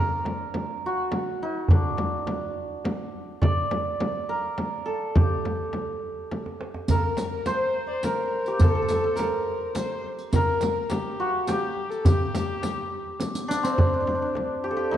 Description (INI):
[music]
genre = Persian modal ensemble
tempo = 104 BPM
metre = 3/4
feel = straight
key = G avaz esfahan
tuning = A4 = 440 Hz
[part]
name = santur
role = melody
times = 0.0-15.0 s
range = C4 to D5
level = -28 LUFS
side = right 1 dB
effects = none
[part]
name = frame drum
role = percussion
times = 0.3-15.0 s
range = none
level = -29 LUFS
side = left 1 dB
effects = none
[part]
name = tombak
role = percussion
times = 0.3-15.0 s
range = none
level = -25 LUFS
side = right 1 dB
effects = none
[part]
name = dark kamancheh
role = second line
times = 6.9-13.2 s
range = G4 to D5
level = -30 LUFS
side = left 5 dB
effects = none
[part]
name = riq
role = percussion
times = 6.9-13.8 s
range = none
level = -35 LUFS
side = right 1 dB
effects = none
[sound]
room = wet scoring stage reverb, RT60 2.0 s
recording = dark, warm production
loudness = -23 LUFS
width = side -11 dB against mid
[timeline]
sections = 0.0-13.8 A section; 13.8-15.0 B section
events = drum fill 6.3-6.9, 13.2-13.8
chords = none